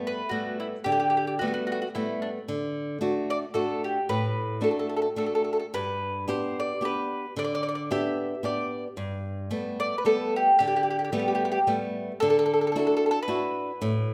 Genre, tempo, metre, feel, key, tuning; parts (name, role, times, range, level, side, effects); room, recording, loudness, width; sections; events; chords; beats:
italian folk, Italian serenade; 111 BPM; 3/4; swing 55% on 8ths; G major; A4 = 440 Hz
flamenco guitar; accompaniment; 0.0-14.1 s; G2 to G4; -32 LUFS; equal
mandolin; melody; 0.1-14.1 s; D4 to E5; -28 LUFS; equal
moderate recital hall reverb, RT60 1.3 s; recorded in a church or concert hall; -27 LUFS; mono
0.0-12.2 A section; 12.2-14.1 B section
0.0 Gadd9; 2.5 D; 5.7 G; 9.0 Gadd9; 12.2 Dadd9
0.32 | 0.86 1.40 1.94 | 2.48 3.01 3.54 | 4.08 4.62 5.17 | 5.72 6.27 6.82 | 7.36 7.90 8.44 | 8.98 9.51 10.05 | 10.59 11.13 11.68 | 12.22 12.76 13.29 | 13.82